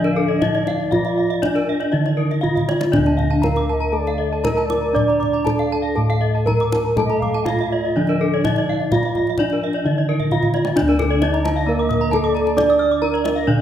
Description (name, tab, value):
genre	Balinese gamelan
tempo	119-133 BPM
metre	4/4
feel	straight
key	D pelog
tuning	A4 = 439 Hz
part	gamelan-type bronze metallophone	melody	0.0-13.6 s	D4 to D5	-21 LUFS	left 1 dB	none
part	bright reedy bansuri	second line	0.0-13.4 s	D5 to A5	-28 LUFS	right 2 dB	none
part	gamelan-type bronze metallophone	accompaniment	0.0-13.6 s	D3 to D4	-27 LUFS	right 5 dB	none
part	gamelan-type bronze metallophone	arpeggios	0.0-13.6 s	A4 to F6	-25 LUFS	left 4 dB	none
part	gamelan-type bronze metallophone	arpeggios	0.0-13.3 s	Bb4 to Eb6+35c	-28 LUFS	right 4 dB	none
part	gamelan-type bossed gongs	bass	0.0-13.6 s	D2 to D5	-22 LUFS	equal	none
part	kendang	percussion	0.0-13.4 s	none	-26 LUFS	left 1 dB	none
room	moderate scoring stage reverb, RT60 1.6 s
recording	none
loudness	-16 LUFS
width	side -10 dB against mid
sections	0.0-10.8 A section; 10.8-13.6 B section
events	drum fill 2.4-2.9, 10.2-10.8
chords	none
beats	0.41 | 0.92 1.42 1.93 2.43 | 2.93 3.44 3.94 4.45 | 4.95 5.45 5.96 6.46 | 6.97 7.47 7.96 8.45 | 8.93 9.40 9.86 10.32 | 10.78 11.23 11.68 12.13 | 12.58 13.03 13.48